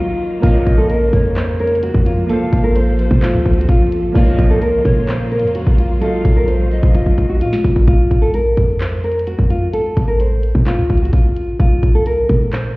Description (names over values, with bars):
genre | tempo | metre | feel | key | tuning
hip hop, trap | 129 BPM | 4/4 | half-time | Bb harmonic minor | A4 = 440 Hz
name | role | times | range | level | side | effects
nylon-string guitar | melody | 0.0-12.7 s | F4 to C5 | -18 LUFS | equal | low-pass filter, digital delay
warm concert grand piano | accompaniment | 0.0-7.9 s | Gb3 to F5 | -23 LUFS | right 2 dB | low-pass filter
bright studio string section | sustained chords | 0.0-7.9 s | C3 to A4 | -26 LUFS | equal | none
bright polished pan flute | second line | 0.4-7.4 s | C5 to F5 | -30 LUFS | left 2 dB | digital delay
resonant sweep polysynth | stabs | 0.4-0.9, 4.2-4.6 s | Bb2 to F3 | -23 LUFS | right 1 dB | chorus
clean 808-style bass | bass | 0.4-12.8 s | A1 to Bb2 | -17 LUFS | equal | none
trap drum kit | drums | 0.4-12.6 s | handclaps, hi-hat, kick drum, snare drum | -15 LUFS | equal | none
room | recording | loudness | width
small room reverb | heard muffled through a wall, stone room reverb, EQ | -12 LUFS | side -22 dB against mid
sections
0.0-7.9 A section; 7.9-12.8 B section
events
break 0.0-0.4; drum fill 6.9-7.9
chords
0.4 Bbm; 2.3 F; 4.2 Bbm; 6.0 Ebmadd9/Bb; 7.9 Bb5; 9.7 F; 11.6 Bb5